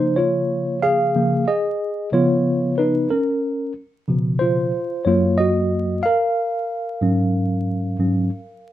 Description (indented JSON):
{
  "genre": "hip hop",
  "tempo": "92 BPM",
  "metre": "4/4",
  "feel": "swing 66% on 16ths",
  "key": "Db major",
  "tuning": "A4 = 437 Hz",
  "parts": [
    { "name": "mellow tine electric piano", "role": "solo", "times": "0.0-8.7 s", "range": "Gb2 to F5", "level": "-18 LUFS", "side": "equal", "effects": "medium stereo tremolo" }
  ],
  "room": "wet studio reverb, RT60 0.5 s",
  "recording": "rough home demo mix, vinyl crackle",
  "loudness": "-18 LUFS",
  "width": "side -13 dB against mid",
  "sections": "0.0-8.7 A section",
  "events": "tine electric piano solo 0.0-8.7",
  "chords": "0.0 Db6; 2.1 Db13; 4.1 Db7; 4.7 Gbmaj7; 7.0 Ab7sus4"
}